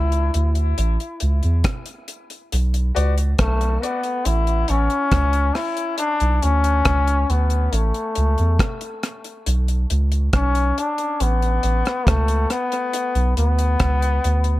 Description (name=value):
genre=dub reggae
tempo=69 BPM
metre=4/4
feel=straight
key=B minor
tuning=A4 = 444 Hz
part: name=bright trombone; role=melody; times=0.0-14.6 s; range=A3 to E4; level=-23 LUFS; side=left 3 dB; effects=tape echo
part: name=soft dub sub bass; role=bass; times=0.0-14.6 s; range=A1 to E2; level=-18 LUFS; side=equal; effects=none
part: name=deep reggae drum kit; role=drums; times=0.1-14.6 s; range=hi-hat, kick drum, rim click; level=-23 LUFS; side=equal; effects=none
part: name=warm concert grand piano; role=stabs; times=2.9-5.7 s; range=E4 to D5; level=-31 LUFS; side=left 6 dB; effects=high-pass filter, tape echo
room=light reverb, studio ambience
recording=none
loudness=-18 LUFS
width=side -16 dB against mid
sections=0.0-14.6 A section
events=break 0.0-2.5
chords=0.0 N.C.; 0.8 A; 2.5 Bm; 4.3 A; 6.0 Bm; 7.7 A; 9.5 Bmadd9; 11.2 A; 12.9 Bm